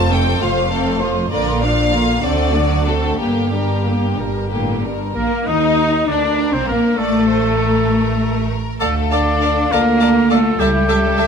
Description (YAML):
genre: quick classical-period movement for symphony orchestra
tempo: 59-69 BPM (dotted quarters)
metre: 6/8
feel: rubato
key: unclear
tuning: A4 = 444 Hz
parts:
  - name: clear studio violin section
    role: melody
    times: 0.0-11.3 s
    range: E4 to A5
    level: -24 LUFS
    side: left 2 dB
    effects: none
  - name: clear studio violin section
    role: second line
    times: 0.0-11.3 s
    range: A3 to A5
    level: -23 LUFS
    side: left 3 dB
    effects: none
  - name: rich studio viola section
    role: accompaniment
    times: 0.0-11.3 s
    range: D3 to E5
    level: -22 LUFS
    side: equal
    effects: none
  - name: clear studio cello section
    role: bass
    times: 0.0-11.3 s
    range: F2 to Eb4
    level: -21 LUFS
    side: right 2 dB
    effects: none
  - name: rich studio double bass section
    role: bass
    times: 0.0-11.3 s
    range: F1 to Eb2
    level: -21 LUFS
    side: right 3 dB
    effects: none
  - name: bright oboe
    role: second line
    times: 5.2-11.3 s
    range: G4 to Eb5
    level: -22 LUFS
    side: right 1 dB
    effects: none
  - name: dark French horn section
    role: sustained chords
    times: 5.2-11.3 s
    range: A3 to F5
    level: -21 LUFS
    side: left 6 dB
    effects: none
room: light reverb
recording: none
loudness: -14 LUFS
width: side -6 dB against mid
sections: 0.0-5.2 A section; 5.2-11.3 A section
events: none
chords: 0.0 F; 1.3 Bb; 2.2 D7; 3.2 Gm; 5.2 Bbadd11; 7.0 Amadd11; 7.9 N.C.; 8.8 Dm; 10.6 A7/C#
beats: 0.43 | 1.32 2.24 | 3.20 4.17 | 5.16 6.09 | 6.99 7.89 | 8.81 9.73 | 10.60